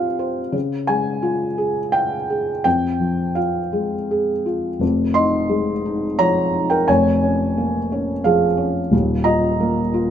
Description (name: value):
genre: neoclassical minimalist piano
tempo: 82-91 BPM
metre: 3/4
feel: rubato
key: F minor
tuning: A4 = 440 Hz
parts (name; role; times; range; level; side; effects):
- felt-muted upright piano; solo; 0.0-10.1 s; Eb1 to C6; -17 LUFS; equal; none
room: light reverb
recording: minimal, uncompressed stereo recording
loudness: -17 LUFS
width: side -9 dB against mid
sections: 0.0-4.8 A section; 4.8-10.1 B section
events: none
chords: 0.0 Csus4; 0.5 Db; 2.6 Fm; 4.8 Fm7; 6.9 Bbm7/F; 8.9 Ebsus2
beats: | 0.54 1.23 1.94 | 2.65 3.37 4.09 | 4.81 5.51 6.20 | 6.88 7.56 8.24 | 8.92 9.59